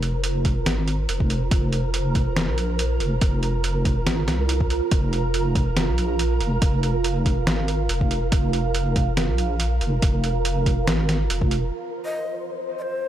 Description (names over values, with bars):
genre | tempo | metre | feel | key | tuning
deep dubstep | 141 BPM | 4/4 | swing 54% on 16ths, half-time | F minor | A4 = 440 Hz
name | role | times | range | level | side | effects
deep dark ambient pad | sustained chords | 0.0-13.1 s | F4 to F5 | -30 LUFS | right 5 dB | chorus, built-in reverb
deep soft wobble bass | bass | 0.0-11.7 s | F1 to C2 | -23 LUFS | equal | chorus
trip hop sampler-style drum kit | drums | 0.0-11.6 s | hi-hat, snare drum | -27 LUFS | equal | low-pass filter on hats, studio ambience, low-pass filter on snare, low-pass filter on cymbals
flickering grainy texture | texture | 0.0-13.1 s | Bb4 to C5 | -30 LUFS | right 2 dB | built-in reverb
electronic kick drum | drums | 0.5-11.5 s | none | -22 LUFS | equal | overdrive, studio ambience
breathy long shakuhachi | melody | 12.1-13.1 s | C5 to Eb5 | -28 LUFS | left 2 dB | dub echo
room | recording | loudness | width
little or no reverb | none | -20 LUFS | side -11 dB against mid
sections
0.0-11.7 A section; 11.7-13.1 B section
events
none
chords
0.0 F5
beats
0.24 0.66 1.09 | 1.51 1.94 2.36 2.79 | 3.21 3.64 4.07 4.49 | 4.92 5.34 5.77 6.19 | 6.62 7.04 7.47 7.90 | 8.32 8.75 9.17 9.60 | 10.02 10.45 10.88 11.30 | 11.73 12.15 12.58 13.00